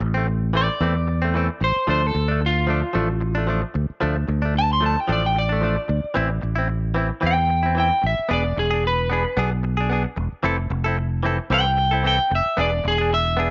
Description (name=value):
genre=straight-eighth soul blues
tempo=112 BPM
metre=4/4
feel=swing 55% on 16ths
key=A minor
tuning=A4 = 440 Hz
part: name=direct-recorded clean electric guitar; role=stabs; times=0.0-13.5 s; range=E3 to A4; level=-28 LUFS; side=equal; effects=none
part: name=fingered electric bass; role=bass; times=0.0-13.5 s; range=E1 to E2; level=-25 LUFS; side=equal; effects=none
part: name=electric guitar at the edge of break-up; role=melody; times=0.6-13.5 s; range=F4 to C6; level=-24 LUFS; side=equal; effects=none
room=moderate spring reverb, RT60 1.2 s, digital ambience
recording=nothing above 7.5 kHz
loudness=-21 LUFS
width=mono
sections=0.0-13.5 A section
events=none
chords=0.0 Am; 1.9 Dm; 6.2 Am; 8.3 E7; 10.4 Fmaj7; 12.6 E7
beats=0.27 0.81 1.34 | 1.88 2.41 2.95 3.48 | 4.02 4.55 5.09 5.62 | 6.16 6.70 7.23 7.76 | 8.30 8.84 9.37 9.90 | 10.44 10.97 11.51 12.04 | 12.58 13.12